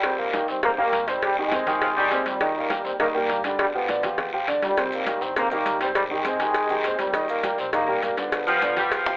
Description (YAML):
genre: latin, salsa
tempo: 203 BPM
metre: 4/4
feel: straight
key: unclear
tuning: A4 = 440 Hz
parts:
  - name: warm trombone section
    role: melody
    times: 0.0-9.2 s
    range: Bb2 to C4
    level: -24 LUFS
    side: equal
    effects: none
  - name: warm grand piano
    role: accompaniment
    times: 0.0-9.2 s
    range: C3 to Eb5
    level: -26 LUFS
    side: right 1 dB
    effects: none
  - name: congas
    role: percussion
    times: 0.0-9.2 s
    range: none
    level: -38 LUFS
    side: equal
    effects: none
  - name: cowbell and bongos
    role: percussion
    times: 0.0-9.1 s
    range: none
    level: -28 LUFS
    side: left 1 dB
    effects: none
  - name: guiro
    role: percussion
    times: 0.0-9.2 s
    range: none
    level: -34 LUFS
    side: left 2 dB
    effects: none
  - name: upright bass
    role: bass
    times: 0.5-9.2 s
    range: G1 to Ab2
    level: -44 LUFS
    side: equal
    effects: none
  - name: clear saxophone section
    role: second line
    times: 1.7-2.2, 8.5-9.2 s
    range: F3 to G3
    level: -23 LUFS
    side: equal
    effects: none
  - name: maracas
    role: percussion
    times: 4.8-9.2 s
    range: none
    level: -47 LUFS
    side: right 2 dB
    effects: none
room: moderate studio ambience, RT60 0.5 s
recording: telephone sound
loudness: -21 LUFS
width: side -21 dB against mid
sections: 0.0-9.2 A section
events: none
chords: 0.0 Abmaj7; 2.4 Eb; 3.6 G7; 4.8 Cm7; 6.0 Abmaj7; 7.1 Eb; 8.3 G7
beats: | 0.04 0.34 0.63 0.93 | 1.22 1.52 1.81 2.11 | 2.41 2.70 3.00 3.29 | 3.59 3.89 4.18 4.48 | 4.77 5.07 5.37 5.66 | 5.96 6.25 6.55 6.84 | 7.14 7.43 7.73 8.03 | 8.32 8.62 8.91